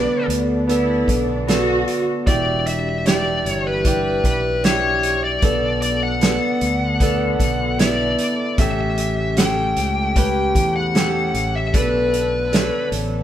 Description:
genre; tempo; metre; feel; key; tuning
pop ballad; 76 BPM; 4/4; straight; B minor; A4 = 435 Hz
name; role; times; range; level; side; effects
smooth overdriven lead guitar; melody; 0.0-12.9 s; B4 to G5; -22 LUFS; left 3 dB; none
rich symphonic cello section; second line; 0.0-2.0 s; D4 to F#4; -24 LUFS; right 1 dB; none
clear concert grand piano; accompaniment; 0.0-13.2 s; B2 to C#5; -23 LUFS; right 2 dB; none
chorused pulse-width pad; sustained chords; 0.0-13.2 s; C#3 to A4; -26 LUFS; left 1 dB; none
fretless electric bass; bass; 0.0-13.2 s; E1 to E2; -25 LUFS; equal; none
loose indie drum kit; drums; 0.3-13.1 s; hi-hat, kick drum, snare drum; -21 LUFS; right 1 dB; none
room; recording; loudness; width
moderate stone room reverb, RT60 1.2 s; band playing live in one room; -16 LUFS; side -11 dB against mid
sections
0.0-13.2 A section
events
none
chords
0.0 Bm7; 2.3 Em7; 5.4 Bm7; 8.6 A7; 11.7 Bm7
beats
0.69 1.48 | 2.27 3.05 3.84 4.63 | 5.42 6.21 7.00 7.79 | 8.58 9.37 10.16 10.95 | 11.74 12.53

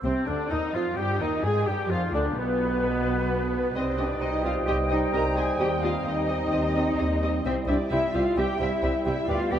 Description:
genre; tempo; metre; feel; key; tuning
quick classical-period movement for symphony orchestra; 130 BPM; 4/4; straight; C minor; A4 = 440 Hz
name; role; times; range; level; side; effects
muted chamber violin section; melody; 0.0-9.6 s; B3 to E5; -36 LUFS; left 3 dB; none
dark clarinet; second line; 0.0-9.6 s; B3 to C5; -36 LUFS; right 5 dB; none
mellow small flute group; second line; 0.0-9.6 s; C4 to G5; -34 LUFS; left 2 dB; none
muted studio violin section; second line; 0.0-9.6 s; B4 to Bb5; -35 LUFS; right 1 dB; none
warm oboe; second line; 0.0-9.6 s; B3 to E5; -35 LUFS; equal; none
mellow bassoon; accompaniment; 0.0-9.6 s; B2 to Ab3; -34 LUFS; left 2 dB; none
muted chamber viola section; accompaniment; 0.0-9.6 s; B3 to Ab4; -34 LUFS; right 2 dB; none
warm French horn section; sustained chords; 0.0-9.6 s; B2 to E4; -32 LUFS; right 1 dB; none
muted chamber cello section; bass; 0.0-9.6 s; B3 to Bb4; -30 LUFS; left 1 dB; none
muted symphonic double bass section; bass; 0.0-9.6 s; B1 to Ab2; -30 LUFS; equal; none
room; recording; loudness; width
wet huge ambient reverb, RT60 7.8 s; in a vast, echoing space; -23 LUFS; side -10 dB against mid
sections
0.0-9.6 A section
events
none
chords
0.0 Cm; 1.9 Bdim; 3.8 Cm; 5.6 Cm/Eb; 7.5 C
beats
| 0.04 0.51 0.97 1.44 | 1.90 2.37 2.83 3.29 | 3.75 4.21 4.67 5.14 | 5.60 6.06 6.53 6.99 | 7.45 7.91 8.37 8.83 | 9.29

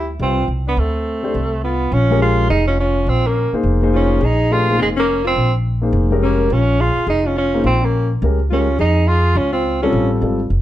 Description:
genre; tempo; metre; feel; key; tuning
jazz; 209 BPM; 4/4; swing 61% on 8ths; Bb dorian; A4 = 440 Hz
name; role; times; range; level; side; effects
warm tenor saxophone; melody; 0.0-10.1 s; Ab3 to F4; -19 LUFS; right 2 dB; plate reverb
warm alto saxophone; second line; 0.0-10.1 s; C4 to Ab4; -24 LUFS; left 4 dB; none
upright bass; bass; 0.0-10.6 s; F1 to F2; -18 LUFS; equal; none
dark concert grand piano; accompaniment; 0.2-10.4 s; G3 to C5; -20 LUFS; left 3 dB; none
room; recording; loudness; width
light reverb; dark, warm production; -14 LUFS; side -13 dB against mid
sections
0.0-1.9 A section; 1.9-10.6 B section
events
none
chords
0.0 Fadd9; 1.9 Bbm9; 9.9 Fadd9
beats
0.20 0.48 | 0.77 1.06 1.35 1.63 | 1.92 2.21 2.49 2.78 | 3.07 3.35 3.64 3.93 | 4.21 4.50 4.79 5.07 | 5.36 5.65 5.93 6.22 | 6.51 6.79 7.08 7.37 | 7.65 7.94 8.22 8.51 | 8.79 9.08 9.37 9.65 | 9.94 10.22 10.51

